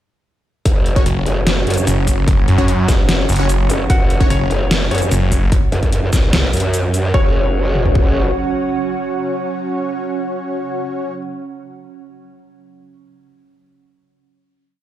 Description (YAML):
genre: heavy wobble dubstep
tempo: 148 BPM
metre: 4/4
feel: half-time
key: unclear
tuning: A4 = 439 Hz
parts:
  - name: evolving wavetable pad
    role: sustained chords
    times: 1.3-11.1 s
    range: C#3 to C#4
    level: -27 LUFS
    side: right 3 dB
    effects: ensemble chorus, built-in reverb, phaser, sidechain pumping
  - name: growl bass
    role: bass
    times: 0.7-8.3 s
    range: F#1 to F#2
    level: -17 LUFS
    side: equal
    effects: chorus, overdrive
  - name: dubstep drum kit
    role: drums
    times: 0.7-8.0 s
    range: kick drum, toms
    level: -15 LUFS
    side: equal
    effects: overdrive
  - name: dubstep drum kit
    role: drums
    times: 0.7-7.0 s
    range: hi-hat, shaker, snare drum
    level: -20 LUFS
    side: left 1 dB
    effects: overdrive
  - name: airy breathy pad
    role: texture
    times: 0.7-11.1 s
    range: F#4 to F#5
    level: -27 LUFS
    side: right 2 dB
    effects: chorus, sidechain pumping
  - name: supersaw stab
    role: stabs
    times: 1.0-4.3, 7.1-11.1 s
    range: C#4 to C#5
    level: -24 LUFS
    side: left 2 dB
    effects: ping-pong delay
  - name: snarling distorted saw bass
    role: bass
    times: 1.1-5.5 s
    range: F#1 to F#2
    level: -15 LUFS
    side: equal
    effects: distortion, overdrive
  - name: bright grand piano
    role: melody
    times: 3.9-11.2 s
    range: C#4 to F#5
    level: -26 LUFS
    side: left 3 dB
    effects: ping-pong delay
room: little or no reverb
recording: played on a big sound system in a bare room, large studio reverb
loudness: -14 LUFS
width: side -13 dB against mid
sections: 0.7-7.1 drop; 7.1-10.4 final chord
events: drop 0.7-7.1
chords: 0.7 F#5